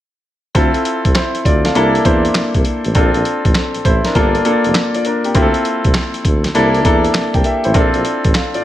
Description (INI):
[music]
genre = R&B, new jack swing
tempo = 100 BPM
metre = 4/4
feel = swing 65% on 16ths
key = D minor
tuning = A4 = 442 Hz
[part]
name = clear baby grand piano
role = accompaniment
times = 0.5-8.6 s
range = Bb3 to G5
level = -15 LUFS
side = left 1 dB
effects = none
[part]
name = boom bap sampler-style drum kit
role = drums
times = 0.5-8.6 s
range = handclaps, hi-hat, kick drum, snare drum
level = -16 LUFS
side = equal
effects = none
[part]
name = breathy tuba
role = bass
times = 0.6-8.6 s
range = F1 to E2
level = -18 LUFS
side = equal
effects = none
[sound]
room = light reverb, small room reverb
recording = none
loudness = -12 LUFS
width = side -13 dB against mid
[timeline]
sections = 0.6-8.6 A section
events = none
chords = 0.6 Dm7; 1.8 C13; 4.2 Gm7; 5.4 Dm7; 6.6 C13; 7.8 Bbmaj7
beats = | 0.55 1.15 1.75 2.35 | 2.95 3.55 4.15 4.75 | 5.35 5.95 6.55 7.15 | 7.75 8.35